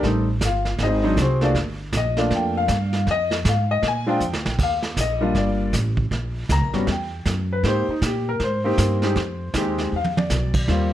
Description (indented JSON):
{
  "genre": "jazz piano trio",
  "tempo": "158 BPM",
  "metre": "4/4",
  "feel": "swing 63% on 8ths",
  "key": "unclear",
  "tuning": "A4 = 442 Hz",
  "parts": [
    { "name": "warm concert grand piano", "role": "melody", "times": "0.0-10.9 s", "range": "Gb3 to Bb5", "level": "-22 LUFS", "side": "left 2 dB", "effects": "none" },
    { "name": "upright bass", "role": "bass", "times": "0.0-10.9 s", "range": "G1 to Bb2", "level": "-23 LUFS", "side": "equal", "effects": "none" },
    { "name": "vintage brush drum kit", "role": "drums", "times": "0.0-10.9 s", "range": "brushed snare drum, crash cymbal, hi-hat, kick drum, snare drum, toms", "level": "-26 LUFS", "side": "right 2 dB", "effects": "none" }
  ],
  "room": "light reverb",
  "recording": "none",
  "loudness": "-19 LUFS",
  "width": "side -12 dB against mid",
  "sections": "0.0-4.6 A section; 4.6-10.9 A section",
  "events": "grand piano solo 0.0-10.9; drum fill 4.2-4.6, 9.9-10.3",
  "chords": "0.0 Am7b5; 0.8 Ab7#11; 1.6 Gm7; 3.1 Fm; 3.8 Bb7; 4.6 Ebmaj7; 6.1 Bbm7; 6.9 Emadd9; 7.6 Abmaj7; 9.2 Fm9; 9.9 E5"
}